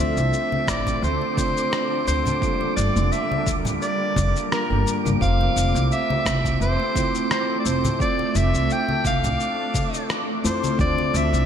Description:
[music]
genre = sunset chillout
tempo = 86 BPM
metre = 4/4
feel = swing 54% on 16ths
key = F major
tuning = A4 = 440 Hz
[part]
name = warm soprano saxophone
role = melody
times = 0.0-11.5 s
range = Bb4 to G5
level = -25 LUFS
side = equal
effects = digital delay
[part]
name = tine electric piano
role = accompaniment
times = 0.0-11.5 s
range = G3 to C5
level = -28 LUFS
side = moving between left 4 dB and right 5 dB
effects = auto-pan, digital delay
[part]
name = shimmering ambient pad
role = sustained chords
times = 0.0-11.5 s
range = D3 to F4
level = -29 LUFS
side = equal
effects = chorus, built-in reverb
[part]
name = upright bass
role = bass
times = 0.0-11.5 s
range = F1 to F2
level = -23 LUFS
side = equal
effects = none
[part]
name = wind-like tuned noise texture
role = texture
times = 0.1-11.5 s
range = D6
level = -33 LUFS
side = right 2 dB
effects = built-in reverb, ensemble chorus
[part]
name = electronic shaker and rim click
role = drums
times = 0.2-11.5 s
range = none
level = -30 LUFS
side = left 2 dB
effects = gated reverb
[part]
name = congas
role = percussion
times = 0.5-11.1 s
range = none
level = -30 LUFS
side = left 1 dB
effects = none
[part]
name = electronic kick drum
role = drums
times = 0.7-10.9 s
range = none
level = -27 LUFS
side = equal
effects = none
[sound]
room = moderate plate reverb, RT60 2.2 s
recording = bright 1980s-style digital production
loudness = -19 LUFS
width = side -8 dB against mid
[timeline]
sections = 0.0-11.5 A section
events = none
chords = 0.0 Dm7; 2.4 Gm7; 5.2 Fmaj7; 10.8 Dm7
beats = 0.33 1.03 1.72 | 2.42 3.12 3.82 4.51 | 5.21 5.91 6.61 7.30 | 8.00 8.70 9.40 10.10 | 10.79

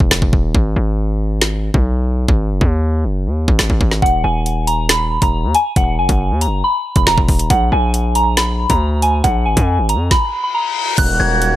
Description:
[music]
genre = hip hop, drill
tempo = 138 BPM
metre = 4/4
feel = half-time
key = Eb harmonic minor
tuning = A4 = 444 Hz
[part]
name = distorted 808-style bass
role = bass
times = 0.0-11.6 s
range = Eb1 to F2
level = -16 LUFS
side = equal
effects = distortion
[part]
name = drill drum kit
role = drums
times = 0.0-11.5 s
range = crash cymbal, finger snaps, hi-hat, kick drum, snare drum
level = -16 LUFS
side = equal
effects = none
[part]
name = soft synth bell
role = melody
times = 4.0-11.6 s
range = Gb5 to Ab6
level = -17 LUFS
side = equal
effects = chorus, phaser, low-pass filter, digital delay
[part]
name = reverse cymbal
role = sound effects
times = 10.3-11.0 s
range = none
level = -23 LUFS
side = left 7 dB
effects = none
[part]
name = warm brass ensemble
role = sustained chords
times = 11.0-11.6 s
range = Eb3 to Gb4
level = -20 LUFS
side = right 2 dB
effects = none
[sound]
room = little or no reverb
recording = none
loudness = -13 LUFS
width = side -14 dB against mid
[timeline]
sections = 0.0-11.0 A section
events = break 0.0-4.0; hi-hats muted 2.3-4.0; reverse cymbal 10.3-11.0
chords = 0.0 N.C.; 0.5 Abm; 4.0 Ebm; 7.5 Bb5; 11.0 Ebm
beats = 0.11 | 0.55 0.98 1.42 1.85 | 2.29 2.72 3.15 3.59 | 4.02 4.46 4.89 5.33 | 5.76 6.20 6.63 7.07 | 7.50 7.94 8.37 8.81 | 9.24 9.68 10.11 10.55 | 10.98 11.41

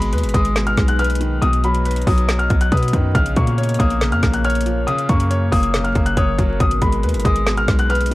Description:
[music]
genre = hip hop, trap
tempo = 139 BPM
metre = 4/4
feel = half-time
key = unclear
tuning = A4 = 440 Hz
[part]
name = dark grand piano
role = melody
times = 0.0-8.1 s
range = Cb6 to Gb6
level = -22 LUFS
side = left 2 dB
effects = low-pass filter
[part]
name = clear concert grand piano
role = accompaniment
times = 0.0-8.1 s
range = Cb3 to Db5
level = -23 LUFS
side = equal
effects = low-pass filter
[part]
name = deep dark ambient pad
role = sustained chords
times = 0.5-8.1 s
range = Gb3 to D#5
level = -30 LUFS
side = left 2 dB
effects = chorus, built-in reverb
[part]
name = warm 808-style bass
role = bass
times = 0.0-8.1 s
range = Gb1 to B2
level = -19 LUFS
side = equal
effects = none
[part]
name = trap drum kit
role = drums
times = 0.0-8.1 s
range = hi-hat, kick drum, snare drum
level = -20 LUFS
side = equal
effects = none
[sound]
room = little or no reverb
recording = dry, gritty hardware recording, vinyl crackle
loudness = -15 LUFS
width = side -18 dB against mid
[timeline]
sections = 0.0-8.1 A section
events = none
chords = 0.0 Abm; 1.4 B; 3.1 Bbm; 4.9 Gb; 6.6 Abm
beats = 0.13 0.56 0.99 | 1.42 1.85 2.29 2.72 | 3.15 3.58 4.01 4.44 | 4.88 5.31 5.74 6.17 | 6.60 7.03 7.46 7.90

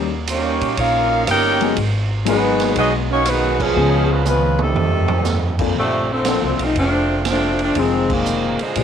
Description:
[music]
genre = jazz, big band swing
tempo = 120 BPM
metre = 4/4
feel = swing 68% on 8ths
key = Bb major from 5.8 s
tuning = A4 = 439 Hz
[part]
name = warm grand piano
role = accompaniment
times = 0.0-8.8 s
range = E#3 to A4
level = -22 LUFS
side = left 10 dB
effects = none
[part]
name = upright bass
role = bass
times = 0.0-8.8 s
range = F1 to A#2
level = -22 LUFS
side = equal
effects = none
[part]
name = clear saxophone section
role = melody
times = 0.3-8.8 s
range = Bb2 to G5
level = -19 LUFS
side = left 1 dB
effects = slapback echo
[part]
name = brilliant trombone section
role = second line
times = 0.3-5.6 s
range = B2 to G4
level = -24 LUFS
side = right 12 dB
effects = none
[part]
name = swinging big-band drum kit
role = drums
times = 0.3-8.8 s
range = crash cymbal, hi-hat, kick drum, ride cymbal, rim click, snare drum, toms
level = -24 LUFS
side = right 6 dB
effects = none
[sound]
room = light reverb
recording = 1960s-style stereo with parts hard left and right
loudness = -15 LUFS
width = side -8 dB against mid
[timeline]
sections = 0.0-5.8 A section; 5.8-8.8 B section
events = band accent 3.5, 8.0; drum fill 4.3-5.3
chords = 0.0 D#7; 1.8 G#m7; 3.8 C#7; 4.8 F13; 5.8 Bbmaj9; 7.8 Fm7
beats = 0.27 0.77 1.27 | 1.77 2.27 2.76 3.26 | 3.76 4.26 4.76 5.26 | 5.76 6.26 6.76 7.26 | 7.76 8.26 8.76

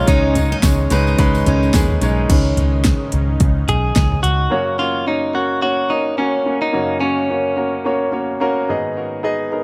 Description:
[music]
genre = piano-driven pop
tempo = 108 BPM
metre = 4/4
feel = swing 56% on 16ths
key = F# major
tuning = A4 = 440 Hz
[part]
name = direct-recorded clean electric guitar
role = melody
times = 0.0-8.1 s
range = C#4 to G#4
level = -23 LUFS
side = equal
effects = tape echo
[part]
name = clear concert grand piano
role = accompaniment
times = 0.0-9.6 s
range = F#2 to D#5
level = -22 LUFS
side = equal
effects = tape echo
[part]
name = lush unison pad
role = sustained chords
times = 0.0-4.5 s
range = G#2 to D#4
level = -31 LUFS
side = equal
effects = none
[part]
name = vintage muted picked electric bass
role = bass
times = 0.0-4.5 s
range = B1 to D#2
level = -20 LUFS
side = equal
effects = none
[part]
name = picked steel-string acoustic guitar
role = riff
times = 0.1-1.7 s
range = C#4 to D#4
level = -28 LUFS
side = equal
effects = tape echo
[part]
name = deep house drum kit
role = drums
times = 0.1-4.4 s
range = crash cymbal, hi-hat, kick drum, snare drum, toms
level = -20 LUFS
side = equal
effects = none
[part]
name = tambourine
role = percussion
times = 0.1-2.2 s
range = none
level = -38 LUFS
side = equal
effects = tape echo
[sound]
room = light reverb, digital ambience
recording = echo-heavy mix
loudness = -17 LUFS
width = mono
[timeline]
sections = 0.0-2.3 A section; 2.3-4.5 B section; 4.5-9.6 C section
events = grand piano solo 2.3-4.5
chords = 0.0 C#sus2; 4.5 F#; 8.7 G#m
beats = | 0.08 0.63 1.19 1.74 | 2.29 2.85 3.40 3.96 | 4.51 5.07 5.62 6.18 | 6.74 7.29 7.85 8.40 | 8.96 9.51

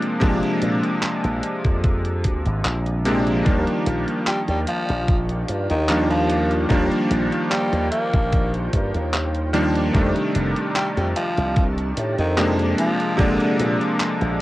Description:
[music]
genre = vaporwave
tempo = 74 BPM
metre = 4/4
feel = straight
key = Eb major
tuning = A4 = 440 Hz
[part]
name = bright electric grand piano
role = accompaniment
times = 0.0-14.4 s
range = C3 to D4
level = -22 LUFS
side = equal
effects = analog chorus, cassette tape, analog delay
[part]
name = detuned 8-bit digital drum machine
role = drums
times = 0.0-14.4 s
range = handclaps, hi-hat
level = -28 LUFS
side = equal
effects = cassette tape
[part]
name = slap bass with an envelope filter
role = bass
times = 0.2-14.4 s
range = F1 to Bb2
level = -24 LUFS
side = equal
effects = none
[part]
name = electronic kick drum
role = drums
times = 0.2-13.4 s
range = none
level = -20 LUFS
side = equal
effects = cassette tape
[part]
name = soft string machine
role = sustained chords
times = 3.5-14.4 s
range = F4 to Bb5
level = -33 LUFS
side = equal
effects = none
[part]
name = growling tenor saxophone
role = melody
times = 4.3-13.7 s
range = D3 to Bb3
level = -26 LUFS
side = equal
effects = cassette tape, tape echo
[sound]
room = moderate booth ambience, RT60 0.2 s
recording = home recording on cassette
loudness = -18 LUFS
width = side -17 dB against mid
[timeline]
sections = 0.0-14.4 A section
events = none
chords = 0.0 Bb7; 3.5 Ebmaj9; 9.9 F13; 12.8 Bb7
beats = | 0.22 1.03 1.84 2.65 | 3.46 4.27 5.08 5.89 | 6.70 7.51 8.33 9.14 | 9.95 10.76 11.57 12.38 | 13.19 14.00

